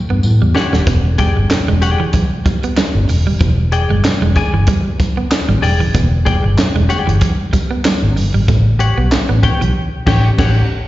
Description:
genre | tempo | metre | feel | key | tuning
funk | 95 BPM | 4/4 | swing 56% on 16ths | unclear | A4 = 439 Hz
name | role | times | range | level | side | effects
clean electric guitar | riff | 0.1-9.7 s | E3 to B3 | -22 LUFS | right 4 dB | slapback echo
vintage muted fingered electric bass | bass | 0.1-10.6 s | D#1 to A2 | -14 LUFS | equal | none
congas | percussion | 0.2-9.6 s | none | -25 LUFS | right 2 dB | slapback echo
tambourine | percussion | 0.2-9.6 s | none | -34 LUFS | left 2 dB | slapback echo
clean electric guitar | accompaniment | 0.5-10.6 s | G4 to G#5 | -21 LUFS | left 4 dB | spring reverb, slapback echo
compact cocktail drum kit | drums | 0.6-10.6 s | crash cymbal, handclaps, hi-hat, kick drum, snare drum | -16 LUFS | equal | none
room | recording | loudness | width
small room ambience | live gig heard through the venue's PA, recital hall reverb, nothing above 7.6 kHz | -12 LUFS | side -16 dB against mid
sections
0.0-10.9 A section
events
drum fill 0.0-0.9; band accent 9.8-10.9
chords
0.0 A13; 0.9 E7#9; 8.5 A13

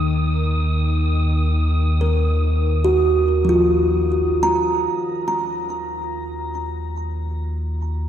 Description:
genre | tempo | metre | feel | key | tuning
ambient | free time | none | none | Eb minor | A4 = 441 Hz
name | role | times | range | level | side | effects
warm sub bass | bass | 0.0-8.1 s | Eb2 | -20 LUFS | equal | none
bowed-like drone | drone | 0.0-5.0 s | Eb3 | -28 LUFS | left 2 dB | built-in reverb
wind-like tuned noise texture | texture | 0.0-5.0 s | Eb6 | -32 LUFS | equal | built-in reverb, shimmer reverb
kalimba | arpeggios | 2.0-7.7 s | F3 to Bb5 | -20 LUFS | right 1 dB | ping-pong delay, shimmer reverb
room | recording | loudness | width
wet lush hall reverb, RT60 2.9 s | dark, warm production | -18 LUFS | side -10 dB against mid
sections
0.0-4.9 A section; 4.9-8.1 B section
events
none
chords
0.0 Ebsus2

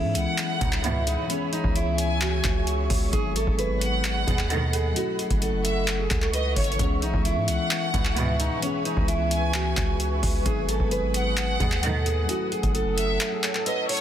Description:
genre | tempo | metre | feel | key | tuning
hip hop, trap | 131 BPM | 4/4 | half-time | C# minor | A4 = 444 Hz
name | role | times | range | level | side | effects
fingerpicked steel-string acoustic guitar | melody | 0.0-14.0 s | C#4 to C#5 | -30 LUFS | right 3 dB | low-pass filter, ping-pong delay
mellow tine electric piano | accompaniment | 0.0-14.0 s | E3 to A4 | -32 LUFS | left 7 dB | phaser, low-pass filter
ethereal airy pad | sustained chords | 0.0-14.0 s | G#4 to E6 | -33 LUFS | equal | ensemble chorus, built-in reverb
hard-hitting 808-style bass | bass | 0.0-13.2 s | F#1 to G#2 | -27 LUFS | equal | none
warm studio violin section | second line | 0.2-14.0 s | C#5 to G#5 | -32 LUFS | equal | ping-pong delay
booming analog drum machine | drums | 0.2-14.0 s | handclaps, hi-hat, kick drum | -27 LUFS | equal | overdrive
warm studio string section | stabs | 0.6-1.2, 4.3-4.8, 7.9-8.5, 11.6-12.2 s | G#1 to D#3 | -31 LUFS | right 3 dB | none
room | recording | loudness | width
little or no reverb | dense, heavily limited modern master | -22 LUFS | side -10 dB against mid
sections
0.0-14.0 A section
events
kick muted 13.2-14.0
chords
0.0 C#m7; 3.1 G#m7; 5.0 F#m7; 6.8 C#m7; 10.5 G#m7; 12.3 F#m7

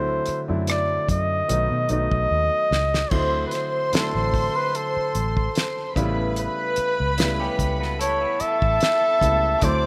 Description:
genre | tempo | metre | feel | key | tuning
lush 1970s-style soul | 74 BPM | 4/4 | swing 54% on 16ths | unclear | A4 = 440 Hz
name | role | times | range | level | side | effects
warm flugelhorn | melody | 0.0-9.9 s | A4 to E5 | -26 LUFS | equal | none
warm baby grand piano | accompaniment | 0.0-9.9 s | C#3 to E4 | -32 LUFS | equal | none
vintage muted fingered electric bass | bass | 0.0-9.9 s | A1 to B2 | -28 LUFS | equal | none
damped 70s drum kit | drums | 0.3-9.8 s | crash cymbal, hi-hat, kick drum, rim click, snare drum | -28 LUFS | equal | none
warm studio string section | second line | 3.1-9.9 s | A4 to D6 | -30 LUFS | equal | none
electric guitar through a small old amp | riff | 7.4-9.4 s | B3 to B4 | -34 LUFS | equal | none
room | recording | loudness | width
light reverb, studio reverb | rough home demo mix, faint mains hum | -22 LUFS | mono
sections
0.0-3.1 A section; 3.1-9.9 B section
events
drum fill 2.3-3.1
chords
0.0 D7; 1.5 B7; 3.1 D7; 6.0 A7

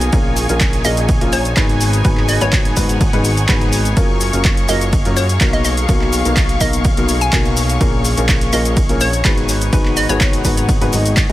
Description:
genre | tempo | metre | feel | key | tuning
piano house | 125 BPM | 4/4 | straight | unclear | A4 = 440 Hz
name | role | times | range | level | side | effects
analog string pad | sustained chords | 0.0-11.3 s | G#5 to C#6 | -28 LUFS | equal | ensemble chorus, sidechain pumping
dark grand piano | riff | 0.0-11.3 s | G#2 to D#5 | -20 LUFS | left 2 dB | sidechain pumping
fat analog bass | bass | 0.0-11.3 s | F#1 to F#2 | -19 LUFS | equal | sidechain pumping
punchy analog drum machine | drums | 0.0-11.3 s | cabasa, handclaps, hi-hat, ride cymbal | -21 LUFS | equal | overdrive
muted studio string section | texture | 0.0-11.3 s | D#4 to F#5 | -26 LUFS | left 2 dB | sidechain pumping
electronic kick drum | drums | 0.1-11.3 s | none | -16 LUFS | equal | overdrive
hollow square pluck | melody | 0.8-10.6 s | C#5 to G#5 | -23 LUFS | equal | chorus, tape echo
room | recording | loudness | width
little or no reverb | none | -12 LUFS | side -15 dB against mid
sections
0.0-11.3 A section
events
none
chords
0.1 A#m7; 1.8 G#m7; 4.0 F#maj7; 5.6 Bmaj7; 7.8 A#m7; 9.5 G#m7

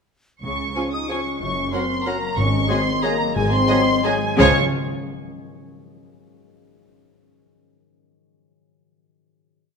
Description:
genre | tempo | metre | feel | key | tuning
classical, orchestral ballroom waltz | 166-199 BPM | 3/4 | rubato | Db major | A4 = 439 Hz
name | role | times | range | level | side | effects
rich symphonic violin section | melody | 0.4-4.6 s | Ab5 to Eb6 | -25 LUFS | right 1 dB | none
bright concert flute | second line | 0.4-4.6 s | Db5 to Eb6 | -27 LUFS | left 3 dB | none
mellow French horn section | sustained chords | 0.4-4.5 s | Ab3 to Eb4 | -24 LUFS | left 1 dB | none
concert harp | arpeggios | 0.4-4.6 s | Gb2 to Db5 | -30 LUFS | left 9 dB | none
rich symphonic double bass section | bass | 0.4-4.6 s | Gb1 to Db2 | -28 LUFS | right 3 dB | none
warm symphonic cello section | bass | 0.4-4.6 s | Gb2 to Db3 | -27 LUFS | right 1 dB | none
timpani | percussion | 0.4-4.5 s | Ab2 to Db3 | -27 LUFS | equal | none
warm clarinet | second line | 0.8-4.5 s | Ab4 to Bb4 | -31 LUFS | left 1 dB | none
warm symphonic violin section | second line | 0.8-4.6 s | Ab4 to Ab5 | -28 LUFS | left 2 dB | none
warm bassoon | accompaniment | 0.8-4.5 s | F3 to Gb3 | -29 LUFS | right 2 dB | none
warm symphonic viola section | accompaniment | 0.8-4.6 s | Ab3 to Gb4 | -28 LUFS | right 1 dB | none
room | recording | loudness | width
moderate scoring stage reverb, RT60 1.7 s | none | -18 LUFS | side -5 dB against mid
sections
0.4-4.4 A section; 4.4-5.4 final chord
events
none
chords
0.4 Db; 1.4 Gb; 2.4 Ab7sus4; 3.4 Ab7; 4.4 Db

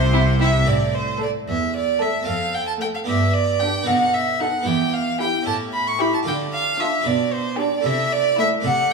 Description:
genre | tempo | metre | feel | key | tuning
classical, baroque-style concerto movement with solo episodes | 75 BPM (dotted quarters) | 6/8 | straight | unclear | A4 = 439 Hz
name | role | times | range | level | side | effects
clear violin | melody | 0.0-8.9 s | C5 to C#6 | -21 LUFS | right 1 dB | none
rich chamber violin section | melody | 0.0-8.6 s | none | barely audible | none | none
harpsichord | accompaniment | 0.0-8.9 s | E2 to B4 | -26 LUFS | right 3 dB | none
rich studio cello section | bass | 0.0-8.9 s | E2 to D3 | -25 LUFS | right 1 dB | none
rich symphonic double bass section | bass | 0.0-0.6 s | C2 | -23 LUFS | right 2 dB | none
rich chamber violin section | second line | 0.1-8.6 s | E4 to A4 | -29 LUFS | left 1 dB | none
rich studio viola section | accompaniment | 0.1-8.6 s | A3 to E4 | -29 LUFS | equal | none
room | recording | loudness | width
wet recital hall reverb, RT60 1.6 s | none | -18 LUFS | side -4 dB against mid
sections
0.7-8.9 A section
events
none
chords
0.0 C; 0.7 Am; 2.3 F; 3.1 G; 3.9 B7; 4.7 Em; 5.5 A7; 6.3 Dm; 7.1 G/B; 7.8 Am/C

